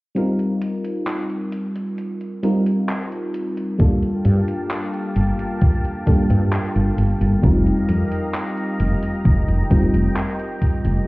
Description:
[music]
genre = vaporwave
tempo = 66 BPM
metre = 4/4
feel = straight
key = unclear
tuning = A4 = 440 Hz
[part]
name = mellow FM electric piano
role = accompaniment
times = 0.1-11.1 s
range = G3 to Bb4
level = -22 LUFS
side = equal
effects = wide subtle chorus, analog delay
[part]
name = gated 80s digital drum machine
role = drums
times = 0.2-11.0 s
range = handclaps, hi-hat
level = -32 LUFS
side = equal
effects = gated reverb, overdrive
[part]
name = lush unison pad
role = sustained chords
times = 3.8-11.1 s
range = Bb3 to Bb5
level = -31 LUFS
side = equal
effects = chorus, vintage 12-bit sampler grit
[part]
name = electronic kick drum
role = drums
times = 3.8-10.8 s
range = none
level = -17 LUFS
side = equal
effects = overdrive
[part]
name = woody fretless electric bass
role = bass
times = 4.3-11.0 s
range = F1 to G2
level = -18 LUFS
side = equal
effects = none
[sound]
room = little or no reverb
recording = heard muffled through a wall, stone room reverb, cassette tape, EQ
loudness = -18 LUFS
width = side -21 dB against mid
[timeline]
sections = 0.2-7.4 A section; 7.4-11.1 B section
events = none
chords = 0.2 F9sus4; 3.8 Gm9; 7.4 F9sus4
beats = | 0.16 1.07 1.98 2.89 | 3.80 4.71 5.62 6.53 | 7.44 8.35 9.26 10.16

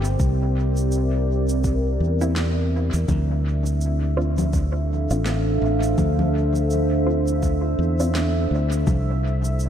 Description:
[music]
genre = ambient dub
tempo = 83 BPM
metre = 4/4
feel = swing 59% on 16ths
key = D minor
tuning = A4 = 439 Hz
[part]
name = deep dark ambient pad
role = sustained chords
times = 0.0-9.7 s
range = C4 to F5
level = -25 LUFS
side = equal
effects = chorus, built-in reverb
[part]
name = fingered electric bass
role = bass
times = 0.0-9.7 s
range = G1 to E2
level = -21 LUFS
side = equal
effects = tube saturation
[part]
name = electronic shaker, snare drum and congas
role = drums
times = 0.0-9.7 s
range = none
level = -30 LUFS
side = left 2 dB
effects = dub echo
[part]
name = electronic kick drum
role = drums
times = 0.2-9.0 s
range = none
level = -24 LUFS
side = equal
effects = none
[part]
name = filtered dub chord stab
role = stabs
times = 2.2-8.1 s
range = Bb3 to F4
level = -32 LUFS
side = right 1 dB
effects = phaser, dub echo
[sound]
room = moderate lush hall reverb, RT60 2.5 s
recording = dreamy mix soaked in reverb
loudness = -19 LUFS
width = side -9 dB against mid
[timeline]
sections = 0.0-9.7 A section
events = none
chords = 0.0 C7; 3.1 Dm7; 8.9 C7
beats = | 0.20 0.92 1.64 2.36 | 3.09 3.81 4.53 5.26 | 5.98 6.70 7.42 8.15 | 8.87 9.59

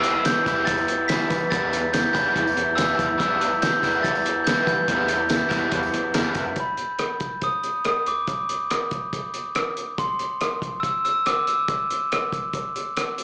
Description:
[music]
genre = indie rock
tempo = 142 BPM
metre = 4/4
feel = straight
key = unclear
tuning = A4 = 440 Hz
[part]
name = glockenspiel with soft plastic mallets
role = melody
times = 0.0-12.3 s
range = B5 to B6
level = -26 LUFS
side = equal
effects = none
[part]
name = electric guitar through a small old amp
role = riff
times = 0.0-6.6 s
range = E3 to E4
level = -30 LUFS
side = equal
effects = slapback echo
[part]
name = raw garage guitar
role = riff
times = 0.0-6.4 s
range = E3 to E4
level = -31 LUFS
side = equal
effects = overdrive, ensemble chorus, slapback echo, analog delay
[part]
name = cloth-damped thuddy drum kit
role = drums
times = 0.0-13.2 s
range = hi-hat, kick drum, rim click, snare drum, tambourine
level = -30 LUFS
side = equal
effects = none
[part]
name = tambourine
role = percussion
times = 0.0-6.5 s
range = none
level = -45 LUFS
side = equal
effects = none
[part]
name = growling fingered electric bass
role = bass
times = 0.5-6.5 s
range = E2 to E3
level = -34 LUFS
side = equal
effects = overdrive
[sound]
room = light reverb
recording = live gig heard through the venue's PA, club reverb, small speaker sound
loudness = -23 LUFS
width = mono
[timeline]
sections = 0.0-6.6 A section; 6.6-13.2 B section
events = none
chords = 0.0 Em; 6.6 N.C.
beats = 0.25 0.68 1.10 | 1.52 1.94 2.36 2.78 | 3.20 3.62 4.05 4.47 | 4.89 5.31 5.73 6.16 | 6.58 7.00 7.43 7.85 | 8.28 8.71 9.13 9.56 | 9.98 10.41 10.84 11.26 | 11.69 12.11 12.54 12.97

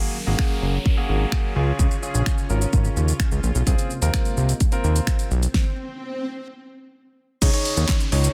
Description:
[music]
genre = dance-pop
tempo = 128 BPM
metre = 4/4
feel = straight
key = Db major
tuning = A4 = 440 Hz
[part]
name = clear concert grand piano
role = accompaniment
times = 0.0-8.3 s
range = Bb3 to Db5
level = -32 LUFS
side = equal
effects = none
[part]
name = sweeping resonant pad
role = sustained chords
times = 0.0-8.3 s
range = C3 to Bb4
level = -35 LUFS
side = equal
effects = chorus, sidechain pumping
[part]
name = downlifter and swell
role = sound effects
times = 0.0-8.3 s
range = none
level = -35 LUFS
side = equal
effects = none
[part]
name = fat analog bass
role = bass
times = 0.3-8.3 s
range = Gb1 to Eb2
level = -23 LUFS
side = equal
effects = sidechain pumping
[part]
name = pop drum kit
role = drums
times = 0.4-8.3 s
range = crash cymbal, finger snaps, handclaps, hi-hat, kick drum, shaker, snare drum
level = -24 LUFS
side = equal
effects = none
[sound]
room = little or no reverb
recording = none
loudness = -22 LUFS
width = mono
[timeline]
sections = 0.0-7.4 A section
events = swell 5.4-7.4; stop 5.5-7.4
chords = 0.0 Gbadd9; 1.6 Db; 3.7 Ab6; 7.4 Dbsus2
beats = 0.39 0.86 1.32 | 1.79 2.26 2.73 3.20 | 3.67 4.14 4.61 5.08 | 5.54 6.01 6.48 6.95 | 7.42 7.89

